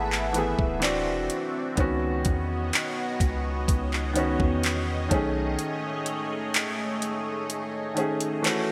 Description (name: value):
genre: contemporary R&B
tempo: 63 BPM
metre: 4/4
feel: straight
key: unclear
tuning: A4 = 440 Hz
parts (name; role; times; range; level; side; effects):
- felt-muted upright piano; accompaniment; 0.0-8.7 s; D#3 to A5; -30 LUFS; equal; none
- lush unison pad; sustained chords; 0.0-8.7 s; A3 to E5; -35 LUFS; equal; chorus, phaser, sidechain pumping
- long sustained 808-style bass; bass; 0.0-5.6 s; D1 to E2; -33 LUFS; equal; none
- smooth R&B drum kit; drums; 0.1-8.7 s; handclaps, hi-hat, kick drum; -30 LUFS; equal; gated reverb
room: moderate lush hall reverb, RT60 2.9 s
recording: bright 1980s-style digital production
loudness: -27 LUFS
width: mono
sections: 0.0-8.7 A section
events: felt piano fill 0.0-1.8; kick muted 5.6-8.7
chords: 0.0 F#m11; 0.8 D9; 1.8 C#9sus4; 5.1 B13